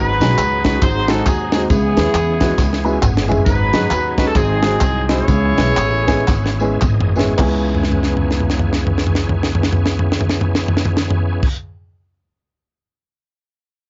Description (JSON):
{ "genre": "uptempo gospel", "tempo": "102-136 BPM", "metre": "4/4", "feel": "swing 61% on 8ths", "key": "C# minor", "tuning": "A4 = 440 Hz", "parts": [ { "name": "clear horn section", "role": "melody", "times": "0.0-6.8 s", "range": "B3 to C#5", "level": "-22 LUFS", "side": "equal", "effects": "none" }, { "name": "warm upright piano", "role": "accompaniment", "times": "0.0-11.5 s", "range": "C#2 to B5", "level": "-24 LUFS", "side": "equal", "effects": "cassette tape" }, { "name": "bright tonewheel organ", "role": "sustained chords", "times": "0.0-11.5 s", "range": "E3 to G#5", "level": "-28 LUFS", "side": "equal", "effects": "fast rotary speaker, overdrive, chorus vibrato, cassette tape" }, { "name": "upright bass", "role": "bass", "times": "0.0-11.5 s", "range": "G1 to F#2", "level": "-22 LUFS", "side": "equal", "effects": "none" }, { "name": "tight funk drum kit", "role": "drums", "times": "0.2-11.6 s", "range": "crash cymbal, hi-hat, kick drum, snare drum, toms", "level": "-20 LUFS", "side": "equal", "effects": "cassette tape" }, { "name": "tambourine and handclaps", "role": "percussion", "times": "0.2-11.5 s", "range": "none", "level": "-29 LUFS", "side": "equal", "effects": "none" } ], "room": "little or no reverb", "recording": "home recording on cassette, nothing above 7.5 kHz", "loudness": "-16 LUFS", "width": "mono", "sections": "0.0-3.5 A section; 3.5-7.4 B section; 7.4-12.1 C section", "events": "drum fill 2.6-3.5, 6.3-7.4, 7.7-11.4; upright piano fill 2.6-3.5; slowing down 3.5-7.4; tonewheel organ fill 5.8-7.4", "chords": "0.0 G#7sus4; 0.8 G#7; 1.7 C#m7; 3.5 G#7sus4; 4.4 G#7; 5.3 C#m7" }